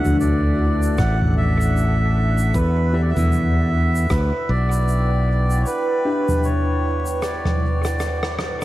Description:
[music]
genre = ambient dub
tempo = 77 BPM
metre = 4/4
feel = swing 60% on 16ths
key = E minor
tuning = A4 = 440 Hz
[part]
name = melodica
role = melody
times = 0.0-8.3 s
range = B4 to F#5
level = -25 LUFS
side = right 1 dB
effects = dub echo
[part]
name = deep dark ambient pad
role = sustained chords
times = 0.0-8.6 s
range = D4 to G5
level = -28 LUFS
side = equal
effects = chorus, built-in reverb
[part]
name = soft synth bell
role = arpeggios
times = 0.0-2.6 s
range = D4 to B4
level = -38 LUFS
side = equal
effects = none
[part]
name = mellow electric guitar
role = stabs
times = 0.0-8.6 s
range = D4 to D5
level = -29 LUFS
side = left 2 dB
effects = dub echo
[part]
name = soft-mallet drum kit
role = drums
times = 0.0-8.6 s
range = rim click, shaker, toms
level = -23 LUFS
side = equal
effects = none
[part]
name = modern bright fingered electric bass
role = bass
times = 0.1-5.6 s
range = A1 to E2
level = -18 LUFS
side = equal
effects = none
[part]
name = electronic kick drum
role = drums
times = 1.0-4.3 s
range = none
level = -22 LUFS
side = equal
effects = none
[sound]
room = light reverb, small room reverb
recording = vinyl crackle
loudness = -17 LUFS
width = side -15 dB against mid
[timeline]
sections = 0.0-8.6 A section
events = break 5.7-8.6; drum fill 7.2-8.6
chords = 0.0 Dmaj7; 2.5 Em7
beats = 0.21 0.98 1.76 | 2.54 3.32 4.10 4.88 | 5.66 6.44 7.22 8.00

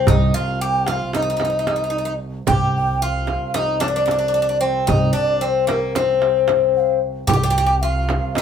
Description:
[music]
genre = Turkish makam ensemble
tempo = 224 BPM (eighths)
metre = 9/8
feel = straight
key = C makam nihavent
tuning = A4 = 440 Hz
[part]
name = Greek bouzouki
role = melody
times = 0.0-8.4 s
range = Bb3 to G4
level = -21 LUFS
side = left 5 dB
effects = none
[part]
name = round clay ocarina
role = second line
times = 0.0-8.4 s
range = Ab4 to G5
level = -22 LUFS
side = right 1 dB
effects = none
[part]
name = clear double bass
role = drone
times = 0.0-8.4 s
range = C2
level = -28 LUFS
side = right 2 dB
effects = none
[part]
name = upright bass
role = bass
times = 0.1-8.2 s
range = C2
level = -20 LUFS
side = right 1 dB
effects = none
[part]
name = darbuka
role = percussion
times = 0.1-8.4 s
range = none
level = -24 LUFS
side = right 2 dB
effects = none
[part]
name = frame drum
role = percussion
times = 0.1-8.4 s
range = none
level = -27 LUFS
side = right 5 dB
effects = none
[sound]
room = moderate studio reverb, RT60 0.8 s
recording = band playing live in one room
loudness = -17 LUFS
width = side -8 dB against mid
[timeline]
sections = 0.0-8.4 A section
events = none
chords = none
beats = | 0.07 0.34 0.61 0.88 1.14 1.41 1.68 1.95 2.21 | 2.48 2.75 3.01 3.28 3.55 3.82 4.08 4.35 4.62 | 4.89 5.15 5.42 5.69 5.96 6.22 6.49 6.76 7.03 | 7.29 7.56 7.83 8.10 8.37

